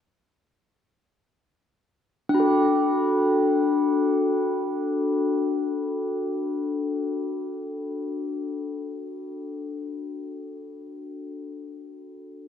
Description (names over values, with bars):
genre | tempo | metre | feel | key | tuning
world meditative, free-time meditation music | free time | none | none | unclear | A4 = 441 Hz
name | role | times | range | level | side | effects
bronze singing bowl | solo | 2.3-10.7 s | D4 to A4 | -24 LUFS | left 2 dB | none
room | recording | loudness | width
wet church reverb, RT60 3.8 s | dark, warm production | -23 LUFS | side -9 dB against mid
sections
0.0-12.5 A section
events
none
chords
none